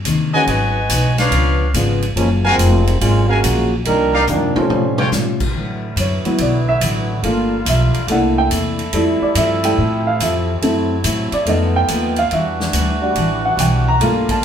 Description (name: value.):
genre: jazz, big band swing.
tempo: 142 BPM.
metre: 4/4.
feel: swing 67% on 8ths.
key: unclear.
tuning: A4 = 440 Hz.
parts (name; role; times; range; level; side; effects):
upright bass; bass; 0.0-14.4 s; F1 to B#2; -19 LUFS; equal; none.
swinging big-band drum kit; drums; 0.0-14.4 s; crash cymbal, hi-hat, kick drum, ride cymbal, snare drum, toms; -24 LUFS; right 1 dB; none.
picked steel-string acoustic guitar; accompaniment; 0.1-14.3 s; G2 to Bb4; -24 LUFS; left 3 dB; none.
clear trumpet section; stabs; 0.3-5.1 s; D4 to Ab5; -18 LUFS; equal; none.
warm baby grand piano; accompaniment; 0.4-2.0, 4.6-14.4 s; Eb3 to Bb5; -18 LUFS; right 1 dB; none.
warm trombone section; second line; 2.2-5.1 s; Db3 to Bb4; -18 LUFS; right 1 dB; none.
muted trombone section; sustained chords; 5.5-14.4 s; C3 to A4; -25 LUFS; equal; none.
room: wet studio reverb, RT60 0.7 s.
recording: band playing live in one room.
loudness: -14 LUFS.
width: side -8 dB against mid.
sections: 0.0-5.5 A section; 5.5-14.4 B section.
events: trombone section solo 0.0-5.5; drum fill 4.3-5.1; grand piano solo 5.5-14.4.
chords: 0.5 Abm7; 1.3 Db7b9; 2.2 Gbmaj9; 3.9 Cm11; 4.7 A7alt; 5.5 D69; 7.2 Gm7; 8.1 C13; 8.9 Fmaj7; 10.6 F#m7b5; 11.5 F7#11; 12.3 Em9.